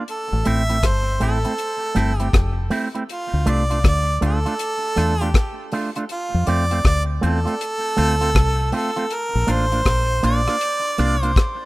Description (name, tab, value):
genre	roots reggae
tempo	80 BPM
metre	4/4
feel	swing 64% on 16ths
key	D minor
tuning	A4 = 440 Hz
part	electric guitar with an envelope filter	accompaniment	0.0-11.3 s	A3 to F4	-25 LUFS	right 2 dB	tape echo
part	clear harmonica	melody	0.1-11.7 s	F4 to E5	-23 LUFS	right 1 dB	tape echo
part	deep reggae drum kit	drums	0.1-11.6 s	hi-hat, kick drum, rim click	-20 LUFS	left 1 dB	none
part	deep dub fingered electric bass	bass	0.3-11.3 s	F1 to F2	-20 LUFS	left 1 dB	none
room	small room ambience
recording	rough home demo mix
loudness	-18 LUFS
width	side -19 dB against mid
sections	0.0-11.7 A section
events	none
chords	0.1 Am; 3.1 Dm; 9.1 Bb